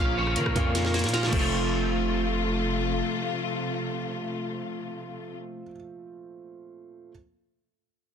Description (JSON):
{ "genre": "hip hop, trap", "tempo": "156 BPM", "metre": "4/4", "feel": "half-time", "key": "unclear", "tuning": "A4 = 440 Hz", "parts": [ { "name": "warm concert grand piano", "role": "accompaniment", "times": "0.0-7.1 s", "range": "Bb2 to F4", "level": "-33 LUFS", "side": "right 5 dB", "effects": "none" }, { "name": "dark studio string section", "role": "sustained chords", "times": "0.0-5.4 s", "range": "C3 to F4", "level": "-32 LUFS", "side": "left 4 dB", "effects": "none" }, { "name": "electric guitar at the edge of break-up", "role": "arpeggios", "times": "0.0-5.7 s", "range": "A3 to F5", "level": "-30 LUFS", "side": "left 2 dB", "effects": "ensemble chorus, tape echo" }, { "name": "distorted 808-style bass", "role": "bass", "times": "0.0-3.0 s", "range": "F1 to F3", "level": "-30 LUFS", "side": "equal", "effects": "distortion" }, { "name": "trap drum kit", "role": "drums", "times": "0.3-1.4 s", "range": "crash cymbal, hi-hat, kick drum, rim click, snare drum", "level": "-29 LUFS", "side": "equal", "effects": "none" } ], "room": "little or no reverb", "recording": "dense, heavily limited modern master", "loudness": "-24 LUFS", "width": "side -8 dB against mid", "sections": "0.0-1.5 A section; 1.5-4.6 B section", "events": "drum fill 0.8-1.5", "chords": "0.0 Bbm; 1.3 F" }